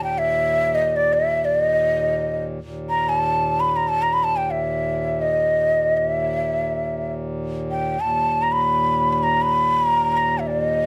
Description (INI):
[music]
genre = indian classical, Hindustani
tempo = free time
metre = none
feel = none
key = unclear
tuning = A4 = 439 Hz
[part]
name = breathy hollow bansuri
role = melody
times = 0.0-10.9 s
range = D5 to Cb6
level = -21 LUFS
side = equal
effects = slapback echo
[part]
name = hand-pumped harmonium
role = drone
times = 0.0-10.9 s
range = Eb2 to Bb2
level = -30 LUFS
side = equal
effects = none
[sound]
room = light reverb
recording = close, detailed microphones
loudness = -21 LUFS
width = mono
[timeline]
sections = 0.0-2.6 A section; 2.6-10.9 A section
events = none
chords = none